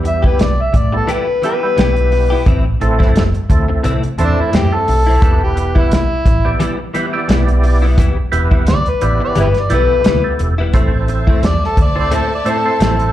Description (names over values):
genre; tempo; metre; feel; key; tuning
straight-eighth soul blues; 87 BPM; 4/4; swing 56% on 16ths; E minor; A4 = 440 Hz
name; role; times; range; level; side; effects
overdriven tonewheel organ; accompaniment; 0.0-13.1 s; G3 to D5; -21 LUFS; right 4 dB; slow rotary speaker, chorus vibrato, slapback echo
direct-recorded clean electric guitar; stabs; 0.0-13.0 s; A2 to G4; -22 LUFS; left 4 dB; ensemble chorus, slapback echo
vintage muted fingered electric bass; bass; 0.0-13.1 s; E1 to A2; -15 LUFS; equal; none
overdriven harmonica; melody; 0.1-13.1 s; D4 to E5; -17 LUFS; left 2 dB; slapback echo
warm soul drum kit; drums; 0.1-13.1 s; hi-hat, kick drum, snare drum; -15 LUFS; equal; none
rich chamber string section; sustained chords; 10.7-13.1 s; C5 to A5; -28 LUFS; left 2 dB; none
room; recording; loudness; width
small room reverb; live gig heard through the venue's PA, club reverb; -12 LUFS; side -13 dB against mid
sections
0.0-13.1 A section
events
harmonica solo 0.0-13.1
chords
0.0 Em; 2.5 Am; 5.2 Em; 10.7 Am